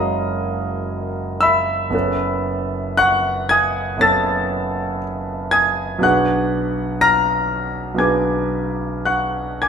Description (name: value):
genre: classical, impressionist solo piano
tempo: 53-62 BPM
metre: 4/4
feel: rubato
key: unclear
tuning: A4 = 441 Hz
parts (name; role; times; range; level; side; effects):
- bright concert grand piano; solo; 0.0-9.7 s; F#1 to A#6; -17 LUFS; equal; none
room: moderate recital hall reverb, RT60 1.6 s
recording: minimal, uncompressed stereo recording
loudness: -17 LUFS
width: side -7 dB against mid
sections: 0.0-9.7 A section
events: none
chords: 0.0 F#69; 1.9 Aadd9/F#; 6.0 Bm6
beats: 0.86 | 1.94 2.97 4.01 5.02 | 6.03 7.02 8.00 9.07